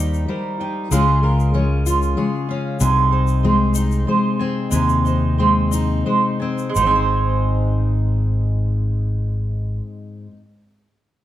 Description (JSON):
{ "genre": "acoustic folk duo or small band", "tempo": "85-95 BPM", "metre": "3/4", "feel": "straight", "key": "Ab major", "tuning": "A4 = 440 Hz", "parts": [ { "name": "fingerpicked steel-string acoustic guitar", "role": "accompaniment", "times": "0.0-10.5 s", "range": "Ab2 to C5", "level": "-21 LUFS", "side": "left 3 dB", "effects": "none" }, { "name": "mandolin", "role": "arpeggios", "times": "0.0-10.4 s", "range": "Ab3 to Ab5", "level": "-22 LUFS", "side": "right 6 dB", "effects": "none" }, { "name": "fingered electric bass", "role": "bass", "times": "0.0-9.8 s", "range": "Ab1 to Eb2", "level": "-19 LUFS", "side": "equal", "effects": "none" }, { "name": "egg shaker", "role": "percussion", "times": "0.1-7.1 s", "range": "none", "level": "-30 LUFS", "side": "left 9 dB", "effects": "none" } ], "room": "moderate large studio reverb, RT60 1.3 s", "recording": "dark, warm production", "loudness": "-16 LUFS", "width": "side -13 dB against mid", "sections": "0.0-6.8 A section; 6.8-11.0 B section", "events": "slowing down 2.8-6.8", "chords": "0.0 Eb; 0.9 Db; 2.8 Ab/C; 6.8 Ab", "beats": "0.29 | 0.92 1.55 2.18 | 2.81 3.44 4.08 | 4.72 5.38 6.06 | 6.75 7.46 8.16 | 8.86 9.57 10.27" }